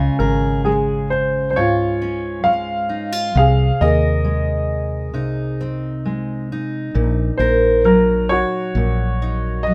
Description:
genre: acoustic folk-pop ballad.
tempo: 66 BPM.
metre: 4/4.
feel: straight.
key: Db major.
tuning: A4 = 439 Hz.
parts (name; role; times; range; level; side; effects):
fingerpicked steel-string acoustic guitar; accompaniment; 0.0-9.7 s; Ab2 to Bb4; -23 LUFS; equal; none.
woody fretless electric bass; bass; 0.0-9.7 s; Ab1 to Eb2; -23 LUFS; equal; none.
clear upright piano; melody; 0.2-9.7 s; F4 to F5; -22 LUFS; equal; none.
room: light reverb.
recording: none.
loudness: -18 LUFS.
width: mono.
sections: 0.0-9.7 A section.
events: none.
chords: 0.0 Db; 3.4 Abadd9/C; 7.0 Ebm/Bb.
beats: 0.65 1.56 2.46 | 3.36 4.26 5.16 6.06 | 6.96 7.86 8.76 9.66.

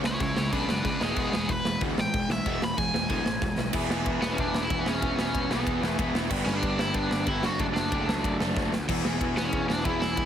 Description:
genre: punk rock.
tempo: 187 BPM.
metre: 4/4.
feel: straight.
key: E mixolydian.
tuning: A4 = 440 Hz.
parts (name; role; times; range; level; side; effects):
crunchy overdriven guitar; riff; 0.0-10.3 s; C#3 to B4; -29 LUFS; equal; none.
fuzz picked electric bass; bass; 0.0-10.3 s; E1 to F#2; -33 LUFS; equal; overdrive.
big rock drum kit; drums; 0.0-10.2 s; crash cymbal, kick drum, ride cymbal, snare drum; -30 LUFS; equal; none.
cranked stack guitar; melody; 0.1-10.3 s; B3 to B5; -30 LUFS; equal; overdrive.
room: light reverb.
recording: heavily compressed radio sound, multiband compression.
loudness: -24 LUFS.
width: side -9 dB against mid.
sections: 0.0-3.7 A section; 3.7-10.3 B section.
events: overdriven electric guitar solo 0.0-3.7; drum fill 3.4-3.7, 8.6-8.9.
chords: 0.0 C#m; 1.0 E; 6.3 G; 7.4 D/F#; 8.9 E.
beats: 0.21 0.53 0.85 | 1.17 1.50 1.82 2.14 | 2.46 2.78 3.10 3.42 | 3.74 4.06 4.38 4.71 | 5.03 5.35 5.67 5.99 | 6.31 6.63 6.95 7.28 | 7.60 7.92 8.24 8.56 | 8.88 9.20 9.52 9.85 | 10.17.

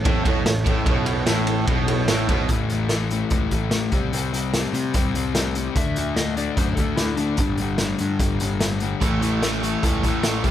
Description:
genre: classic rock.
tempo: 147 BPM.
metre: 4/4.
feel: straight.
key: unclear.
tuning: A4 = 440 Hz.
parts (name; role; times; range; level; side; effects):
crunchy overdriven guitar; riff; 0.0-2.5, 9.0-10.5 s; A2 to C4; -26 LUFS; right 7 dB; none.
fuzz picked electric bass; bass; 0.0-10.5 s; G1 to C3; -27 LUFS; equal; overdrive.
dark upright piano; accompaniment; 0.1-2.5 s; E4 to C#5; -29 LUFS; right 6 dB; none.
overdriven semi-hollow guitar; riff; 0.1-10.5 s; G2 to D4; -25 LUFS; left 8 dB; none.
raw garage drum kit; drums; 0.1-10.5 s; hi-hat, kick drum, ride cymbal, snare drum; -23 LUFS; equal; none.
electric slide guitar; second line; 5.8-8.6 s; D4 to E5; -29 LUFS; left 2 dB; none.
room: light reverb.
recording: none.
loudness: -19 LUFS.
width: side -11 dB against mid.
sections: 0.0-2.5 A section; 2.5-10.5 B section.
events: none.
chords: 0.0 A; 3.9 C5; 5.8 D5; 7.4 G5; 9.0 A.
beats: 0.06 0.46 | 0.87 1.27 1.68 2.08 | 2.49 2.90 3.31 3.72 | 4.12 4.53 4.94 5.35 | 5.76 6.17 6.58 6.99 | 7.39 7.80 8.21 8.62 | 9.02 9.43 9.84 10.24.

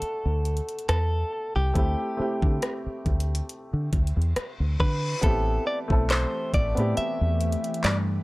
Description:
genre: contemporary R&B.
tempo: 69 BPM.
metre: 4/4.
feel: swing 54% on 16ths.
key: unclear.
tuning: A4 = 440 Hz.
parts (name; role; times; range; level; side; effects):
direct-recorded clean electric guitar; melody; 0.0-8.0 s; G4 to E5; -30 LUFS; equal; analog delay.
warm baby grand piano; accompaniment; 0.0-8.2 s; A3 to A4; -33 LUFS; equal; none.
deep dub fingered electric bass; bass; 0.0-8.2 s; A1 to D3; -25 LUFS; equal; none.
smooth R&B drum kit; drums; 0.0-8.1 s; handclaps, hi-hat, kick drum, rim click; -26 LUFS; equal; none.
reverse cymbal; sound effects; 4.4-5.2 s; none; -39 LUFS; left 4 dB; none.
glassy FM pad; sustained chords; 5.8-8.2 s; E3 to G4; -35 LUFS; left 2 dB; ensemble chorus, built-in reverb, sidechain pumping.
large celesta; texture; 5.2-7.0 s; A5; -42 LUFS; right 4 dB; none.
room: little or no reverb.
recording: dry, gritty hardware recording.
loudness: -23 LUFS.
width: side -21 dB against mid.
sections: 0.0-5.2 A section; 5.2-8.2 B section.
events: reverse cymbal 4.4-5.2.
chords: 0.0 Cmaj13 (rootless); 1.8 D7sus4; 5.2 Am7.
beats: 0.02 0.89 | 1.76 2.63 3.50 4.37 | 5.24 6.10 6.97 7.84.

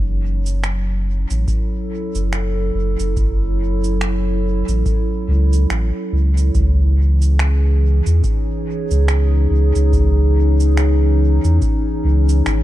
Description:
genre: ambient dub.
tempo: 71 BPM.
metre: 4/4.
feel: swing 59% on 16ths.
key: C# minor.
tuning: A4 = 442 Hz.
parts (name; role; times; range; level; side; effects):
warbly tape-like pad; sustained chords; 0.0-12.6 s; E3 to C#5; -22 LUFS; equal; chorus, built-in reverb.
warm sub bass; bass; 0.0-12.6 s; F#1 to E2; -15 LUFS; equal; none.
electronic cabasa and finger snaps; drums; 0.5-12.6 s; none; -28 LUFS; right 2 dB; dub echo.
electronic kick drum; drums; 1.5-11.8 s; none; -21 LUFS; equal; none.
room: little or no reverb.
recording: dark, warm production.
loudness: -15 LUFS.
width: side -14 dB against mid.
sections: 0.0-12.6 A section.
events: none.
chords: 0.0 F#m7; 6.5 C#madd9.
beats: 0.63 1.48 2.33 | 3.17 4.01 4.86 5.71 | 6.55 7.39 8.24 9.09 | 9.93 10.78 11.62 12.46.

